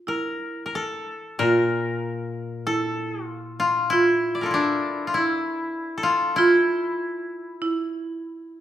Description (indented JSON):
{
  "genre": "japanese traditional, Japanese chamber music",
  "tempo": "48 BPM",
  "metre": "4/4",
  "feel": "rubato",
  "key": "D hirajoshi",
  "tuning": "A4 = 441 Hz",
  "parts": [
    { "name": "koto", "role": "melody", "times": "0.0-8.6 s", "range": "D4 to D5", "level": "-24 LUFS", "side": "left 2 dB", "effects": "none" },
    { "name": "marimba with hard mallets", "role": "second line", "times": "0.0-8.6 s", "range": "E4 to F4", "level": "-24 LUFS", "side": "right 2 dB", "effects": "none" },
    { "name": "koto", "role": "accompaniment", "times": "1.4-4.8 s", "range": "Bb2", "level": "-31 LUFS", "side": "left 5 dB", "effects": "none" }
  ],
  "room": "wet recital hall reverb, RT60 1.4 s",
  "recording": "recorded in a church or concert hall",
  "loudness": "-21 LUFS",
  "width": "side -11 dB against mid",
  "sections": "0.0-1.4 A section; 1.4-8.6 B section",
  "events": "none",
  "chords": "none",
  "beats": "0.08 | 1.41 2.67 3.92 5.18 | 6.41 7.62"
}